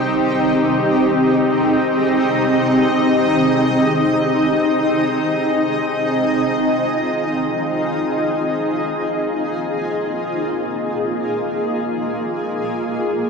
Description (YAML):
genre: ambient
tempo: free time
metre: none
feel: none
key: unclear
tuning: A4 = 440 Hz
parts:
  - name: granular cloud pad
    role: solo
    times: 0.0-13.3 s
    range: Bb3 to Eb5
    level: -16 LUFS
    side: equal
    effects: built-in reverb
room: wet huge ambient reverb, RT60 9.0 s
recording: dark, warm production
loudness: -16 LUFS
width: side -5 dB against mid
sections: 0.0-13.2 A section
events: none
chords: 0.0 Abmaj7; 4.5 Fm7; 8.8 Bb7sus4